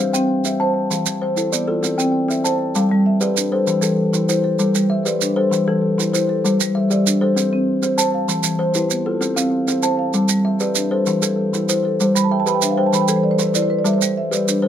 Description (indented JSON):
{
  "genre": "southern african traditional, mbira-style interlocking cycle",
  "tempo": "130 BPM (dotted quarters)",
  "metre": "12/8",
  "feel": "straight",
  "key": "G mixolydian",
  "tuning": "A4 = 442 Hz",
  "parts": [
    { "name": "kalimba", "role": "arpeggios", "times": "0.0-14.7 s", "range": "E3 to A5", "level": "-18 LUFS", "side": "left 2 dB", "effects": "slapback echo" },
    { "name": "marimba with soft mallets", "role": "arpeggios", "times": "0.1-14.7 s", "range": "E3 to B5", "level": "-22 LUFS", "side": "right 3 dB", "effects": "none" },
    { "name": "maracas", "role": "percussion", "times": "0.1-14.6 s", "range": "none", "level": "-23 LUFS", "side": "right 10 dB", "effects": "none" }
  ],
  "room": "light reverb",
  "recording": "close, detailed microphones",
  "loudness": "-16 LUFS",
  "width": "side -10 dB against mid",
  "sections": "0.0-2.8 A section; 2.8-14.7 B section",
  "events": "marimba fill 12.0-13.9",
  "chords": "0.0 C; 0.9 E5; 1.8 C; 2.8 G; 3.7 Am/E; 4.6 G; 5.5 Am/E; 6.4 G5; 7.4 F/C; 8.3 Em; 9.2 F/C; 10.1 G; 11.1 Am/E; 12.0 G; 12.9 Am11/E; 13.9 G"
}